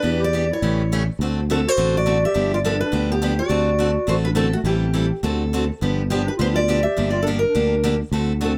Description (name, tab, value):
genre	acoustic string swing (jazz manouche)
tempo	208 BPM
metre	4/4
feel	swing 58% on 8ths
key	D mixolydian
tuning	A4 = 440 Hz
part	picked steel-string acoustic guitar	melody	0.0-8.6 s	F#4 to E5	-25 LUFS	equal	none
part	breathy clarinet	second line	0.0-8.6 s	A3 to G4	-29 LUFS	equal	none
part	picked steel-string acoustic guitar	accompaniment	0.0-8.5 s	C#3 to A4	-28 LUFS	equal	none
part	sustaining fretless electric bass	bass	0.0-8.6 s	G1 to E2	-24 LUFS	equal	none
room	little or no reverb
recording	close, detailed microphones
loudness	-20 LUFS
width	mono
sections	0.0-1.2 A section; 1.2-8.6 A section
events	none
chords	0.0 Em7; 0.6 A7; 1.2 D7; 2.4 G7; 3.5 D7; 4.7 Am7; 5.2 D7; 5.8 G7; 7.0 Gm7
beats	| 0.04 0.33 0.62 0.91 | 1.20 1.49 1.78 2.06 | 2.35 2.64 2.93 3.22 | 3.51 3.80 4.09 4.38 | 4.66 4.95 5.24 5.53 | 5.82 6.11 6.40 6.68 | 6.97 7.26 7.55 7.84 | 8.13 8.42